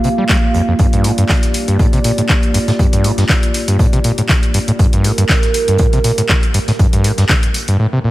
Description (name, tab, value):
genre	acid house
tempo	120 BPM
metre	4/4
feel	swing 55% on 16ths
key	G minor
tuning	A4 = 438 Hz
part	dark analog pad	sustained chords	0.0-7.8 s	Bb3 to F5	-20 LUFS	right 2 dB	lush chorus, sidechain pumping
part	overdriven acid bass	riff	0.0-8.1 s	F2 to G3	-16 LUFS	equal	distortion, cassette tape
part	vintage brush drum kit	drums	0.0-7.8 s	hi-hat, snare drum	-28 LUFS	right 2 dB	sidechain pumping on hats, high-pass filter on hats, high-pass filter on snare, high-pass filter on room
part	electronic kick drum	drums	0.3-7.4 s	none	-14 LUFS	equal	none
part	punchy analog drum machine	drums	0.3-7.8 s	handclaps, hi-hat	-20 LUFS	left 1 dB	none
room	light reverb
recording	none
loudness	-11 LUFS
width	side -16 dB against mid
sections	0.0-8.1 A section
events	none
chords	0.0 Gm7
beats	0.29 | 0.79 1.29 1.79 2.29 | 2.79 3.29 3.79 4.29 | 4.79 5.29 5.79 6.29 | 6.79 7.29 7.79